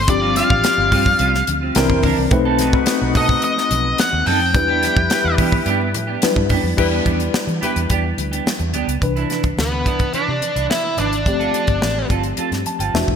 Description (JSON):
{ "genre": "polished 1980s jazz-funk pop", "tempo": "107 BPM", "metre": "4/4", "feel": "straight", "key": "C major", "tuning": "A4 = 440 Hz", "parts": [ { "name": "octave-fuzz lead guitar", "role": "melody", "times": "0.0-5.3, 9.6-12.1 s", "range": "B3 to G5", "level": "-20 LUFS", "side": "left 1 dB", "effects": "distortion" }, { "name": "tine electric piano", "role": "accompaniment", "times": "0.0-13.2 s", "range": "C3 to A5", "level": "-22 LUFS", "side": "left 3 dB", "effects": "overdrive, fast stereo tremolo, lush chorus" }, { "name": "vintage muted fingered electric bass", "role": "bass", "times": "0.0-13.2 s", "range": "E1 to E3", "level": "-23 LUFS", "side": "equal", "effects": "none" }, { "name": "mellow horn section", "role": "second line", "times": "0.1-7.8 s", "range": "D#4 to D5", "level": "-26 LUFS", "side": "left 4 dB", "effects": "ping-pong delay" }, { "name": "clean electric guitar", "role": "riff", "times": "0.1-13.1 s", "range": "G3 to B4", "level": "-24 LUFS", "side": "right 8 dB", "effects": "analog chorus" }, { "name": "tight funk drum kit", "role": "drums", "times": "0.1-13.2 s", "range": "crash cymbal, hi-hat, kick drum, snare drum", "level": "-21 LUFS", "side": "equal", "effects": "gated reverb" }, { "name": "congas", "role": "percussion", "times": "0.1-13.1 s", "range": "none", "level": "-34 LUFS", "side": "left 2 dB", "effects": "none" } ], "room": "moderate plate reverb, RT60 2.4 s", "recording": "bright 1980s-style digital production", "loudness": "-15 LUFS", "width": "side -7 dB against mid", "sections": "0.0-6.8 A section; 6.8-9.0 B section; 9.0-13.2 C section", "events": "tine electric piano fill 12.4-13.2", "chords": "0.1 G7sus4; 1.8 C9; 2.3 B7b9; 4.5 Em7; 9.0 Cmaj9; 11.3 G9sus4" }